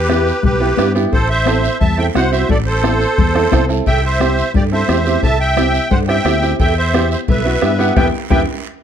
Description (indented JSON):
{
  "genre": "latin, cumbia",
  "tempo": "175 BPM",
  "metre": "4/4",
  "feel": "straight",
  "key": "E minor",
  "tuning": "A4 = 440 Hz",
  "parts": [
    { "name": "musette accordion", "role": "melody", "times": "0.0-8.4 s", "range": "G4 to A5", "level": "-18 LUFS", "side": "right 1 dB", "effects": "none" },
    { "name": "fingered electric bass", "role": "bass", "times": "0.0-8.4 s", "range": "A1 to G2", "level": "-19 LUFS", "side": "equal", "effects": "none" },
    { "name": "bright upright piano", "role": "accompaniment", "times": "0.1-8.4 s", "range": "B3 to A4", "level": "-19 LUFS", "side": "right 4 dB", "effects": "none" },
    { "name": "bombo", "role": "percussion", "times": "0.1-8.4 s", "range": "none", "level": "-19 LUFS", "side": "left 1 dB", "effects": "none" },
    { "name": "congas", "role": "percussion", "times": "0.1-8.4 s", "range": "none", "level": "-23 LUFS", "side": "left 6 dB", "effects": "none" },
    { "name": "guiro", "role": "percussion", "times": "0.1-8.4 s", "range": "none", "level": "-32 LUFS", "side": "right 8 dB", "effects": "none" },
    { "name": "cowbell and timbales", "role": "percussion", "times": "3.9-8.4 s", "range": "none", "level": "-26 LUFS", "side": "right 7 dB", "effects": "none" },
    { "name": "breathy clarinet", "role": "second line", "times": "7.6-8.4 s", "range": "E5 to G5", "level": "-22 LUFS", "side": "left 6 dB", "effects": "none" }
  ],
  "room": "light reverb",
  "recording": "dark, warm production",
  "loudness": "-12 LUFS",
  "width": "side -9 dB against mid",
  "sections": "0.0-8.8 A section",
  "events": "band accent 8.0-8.8; drum fill 8.5-8.8",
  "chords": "0.0 Em; 1.1 Am; 3.9 C; 6.6 Em",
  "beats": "0.10 0.44 0.78 | 1.12 1.47 1.81 2.15 | 2.49 2.83 3.18 3.52 | 3.86 4.20 4.55 4.89 | 5.23 5.57 5.92 6.26 | 6.60 6.94 7.28 7.63 | 7.97 8.31"
}